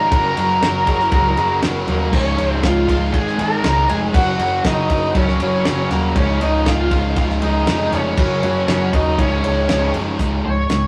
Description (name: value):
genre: classic rock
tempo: 119 BPM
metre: 4/4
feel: straight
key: Db major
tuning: A4 = 440 Hz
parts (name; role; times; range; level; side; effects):
- octave-fuzz lead guitar; melody; 0.0-10.9 s; Bb3 to Db5; -22 LUFS; equal; distortion
- octave-fuzz lead guitar; second line; 0.0-9.9 s; Bb4 to Bb5; -33 LUFS; equal; distortion
- bright tonewheel organ; sustained chords; 0.0-10.2 s; F3 to Db5; -34 LUFS; equal; none
- biting overdriven guitar; riff; 0.0-10.9 s; Db2 to Ab3; -28 LUFS; equal; none
- biting overdriven guitar; riff; 0.0-10.9 s; Db2 to Ab3; -25 LUFS; equal; none
- fuzz picked electric bass; bass; 0.0-10.9 s; Db1 to Db2; -24 LUFS; equal; overdrive
- damped 70s drum kit; drums; 0.1-10.8 s; crash cymbal, hi-hat, kick drum, ride cymbal, snare drum; -24 LUFS; equal; none
- overdriven slide guitar; second line; 0.9-1.9 s; Fb4 to Bb4; -31 LUFS; equal; none
room: moderate small room reverb, RT60 0.5 s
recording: rough rehearsal-room recording, tube saturation, small room ambience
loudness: -17 LUFS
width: mono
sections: 0.0-10.2 A section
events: none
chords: 0.1 Gb; 2.1 Db; 3.1 Absus4; 4.1 Gb; 6.2 Db; 8.2 Gb; 9.2 Db; 10.2 Db5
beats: | 0.12 0.62 1.13 1.63 | 2.13 2.64 3.14 3.65 | 4.15 4.65 5.16 5.66 | 6.16 6.67 7.17 7.67 | 8.18 8.68 9.18 9.69 | 10.19 10.70